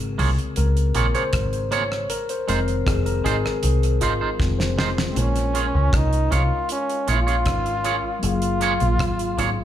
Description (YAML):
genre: lovers rock reggae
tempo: 78 BPM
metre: 4/4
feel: straight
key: Bb minor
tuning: A4 = 442 Hz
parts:
  - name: mellow tine electric piano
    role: accompaniment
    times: 0.0-9.6 s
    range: Db3 to Db5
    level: -26 LUFS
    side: left 4 dB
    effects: tape echo
  - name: deep dub fingered electric bass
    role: bass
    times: 0.0-9.6 s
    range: F1 to Db2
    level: -22 LUFS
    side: equal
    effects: none
  - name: damped 70s drum kit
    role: drums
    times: 0.0-9.6 s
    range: hi-hat, kick drum, rim click, snare drum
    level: -27 LUFS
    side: equal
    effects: tape echo
  - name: twangy electric guitar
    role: stabs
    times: 0.2-9.5 s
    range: Ab3 to Db5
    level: -27 LUFS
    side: right 7 dB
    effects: none
  - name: bright trombone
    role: melody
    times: 5.1-9.6 s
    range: C4 to F4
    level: -24 LUFS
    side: equal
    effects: tape echo
room: light reverb, studio reverb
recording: small room ambience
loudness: -19 LUFS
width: side -11 dB against mid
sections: 0.0-5.2 A section; 5.2-9.6 B section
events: tine electric piano solo 0.0-5.2; drum fill 4.4-5.2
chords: 0.0 Bbm7; 2.1 Fm7; 5.2 Bbm7; 8.2 Gbmaj9